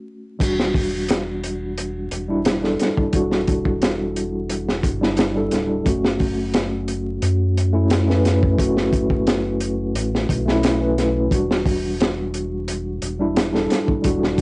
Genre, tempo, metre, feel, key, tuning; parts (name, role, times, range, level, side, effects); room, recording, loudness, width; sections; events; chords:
trip hop; 88 BPM; 4/4; straight; E dorian; A4 = 439 Hz
mellow tine electric piano; accompaniment; 0.0-14.4 s; G3 to B4; -21 LUFS; equal; tremolo, cassette tape, tape echo, plate reverb
round analog bass; bass; 0.4-14.4 s; D1 to F#2; -24 LUFS; equal
crunchy breakbeat drum kit; drums; 0.4-14.4 s; crash cymbal, hi-hat, kick drum, snare drum; -21 LUFS; equal; cassette tape
light reverb; home recording on cassette, vinyl crackle, nothing above 10.9 kHz; -18 LUFS; side -28 dB against mid
0.4-14.4 A section
0.4 Em7; 5.9 F#m; 11.3 Em7